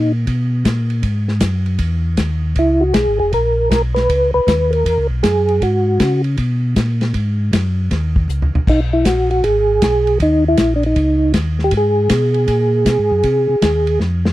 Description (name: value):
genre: soul jazz organ trio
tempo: 157 BPM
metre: 4/4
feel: swing 66% on 8ths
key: G# minor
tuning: A4 = 440 Hz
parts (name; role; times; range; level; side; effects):
- percussive tonewheel organ; melody; 0.0-0.1, 2.6-6.2, 8.7-14.0 s; D4 to B4; -15 LUFS; right 1 dB; chorus vibrato, slow rotary speaker
- mellow tonewheel organ; bass; 0.0-14.3 s; E1 to C#3; -17 LUFS; equal; slow rotary speaker
- warm soul drum kit; drums; 0.3-14.3 s; crash cymbal, hi-hat, kick drum, ride cymbal, snare drum, toms; -20 LUFS; left 1 dB; none
room: little or no reverb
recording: dry, close 1970s-style studio recording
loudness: -13 LUFS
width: side -16 dB against mid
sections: 0.0-14.3 A section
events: drum fill 8.3-8.7, 14.0-14.3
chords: 0.0 G#m7; 2.6 C#m7; 5.6 G#m7; 8.7 G#m9; 10.2 D#5; 11.7 G#m7; 13.2 G#